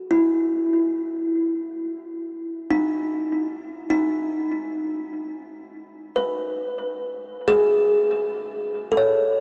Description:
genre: ambient.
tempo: free time.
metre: none.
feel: none.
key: unclear.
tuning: A4 = 441 Hz.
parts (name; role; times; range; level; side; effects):
kalimba; solo; 0.1-9.4 s; D#4 to C#5; -24 LUFS; equal; tape echo.
room: wet huge ambient reverb, RT60 7.4 s.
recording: worn, warbling old tape, cassette tape, warbly pitch drift.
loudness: -24 LUFS.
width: mono.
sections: 0.0-9.4 A section.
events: none.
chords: 0.0 Amaj7sus2/D# (rootless).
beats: free time.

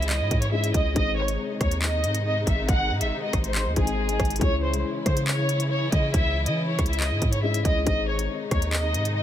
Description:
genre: hip hop, drill.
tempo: 139 BPM.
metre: 4/4.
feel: half-time.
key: C# harmonic minor.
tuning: A4 = 441 Hz.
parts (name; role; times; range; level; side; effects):
warm studio violin section; melody; 0.0-9.2 s; G#4 to F#5; -28 LUFS; equal; low-pass filter, ping-pong delay.
felt-muted upright piano; accompaniment; 0.0-9.2 s; G#3 to D#5; -32 LUFS; left 7 dB; low-pass filter.
warm symphonic string section; sustained chords; 0.0-9.2 s; B#2 to E4; -32 LUFS; left 1 dB; none.
long sustained 808-style bass; bass; 0.0-9.2 s; G#1 to E3; -26 LUFS; equal; none.
drill drum kit; drums; 0.0-9.2 s; handclaps, hi-hat, kick drum, rim click; -25 LUFS; equal; none.
room: small room ambience.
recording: none.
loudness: -22 LUFS.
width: side -11 dB against mid.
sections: 0.0-9.2 A section.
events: none.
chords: 0.0 C#m; 1.0 G#; 4.4 C#m; 7.9 G#.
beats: 0.10 0.53 | 0.96 1.39 1.82 2.25 | 2.69 3.12 3.55 3.98 | 4.41 4.84 5.28 5.71 | 6.14 6.57 7.00 7.43 | 7.87 8.30 8.73 9.16.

